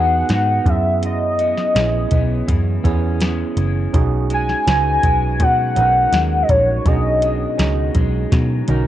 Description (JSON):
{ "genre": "indie pop, bedroom pop", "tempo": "82 BPM", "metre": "4/4", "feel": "straight", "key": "B major", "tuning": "A4 = 440 Hz", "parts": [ { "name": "warm velvety synth lead", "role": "melody", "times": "0.0-8.0 s", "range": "C#5 to G#5", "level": "-18 LUFS", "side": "left 1 dB", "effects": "analog chorus, cassette tape, tape echo" }, { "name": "electric guitar at the edge of break-up", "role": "accompaniment", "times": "0.0-8.9 s", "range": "F#2 to G#4", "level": "-29 LUFS", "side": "left 9 dB", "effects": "wide subtle chorus, warbly pitch drift, cassette tape" }, { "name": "tine electric piano", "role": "accompaniment", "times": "0.0-8.9 s", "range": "B3 to B4", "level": "-25 LUFS", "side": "right 10 dB", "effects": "medium stereo tremolo, cassette tape" }, { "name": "vintage muted picked electric bass", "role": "bass", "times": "0.0-8.9 s", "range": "F#1 to B2", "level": "-19 LUFS", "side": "equal", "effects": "none" }, { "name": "soft vintage rhythm box", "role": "drums", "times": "0.3-8.9 s", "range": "hi-hat, kick drum, snare drum, toms", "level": "-19 LUFS", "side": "equal", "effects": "cassette tape" } ], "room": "light reverb, digital ambience", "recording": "home recording on cassette", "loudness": "-15 LUFS", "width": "side -12 dB against mid", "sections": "0.0-8.9 A section", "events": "drum fill 8.3-8.9", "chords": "0.0 Emaj7; 0.7 F#7sus4; 3.9 B6" }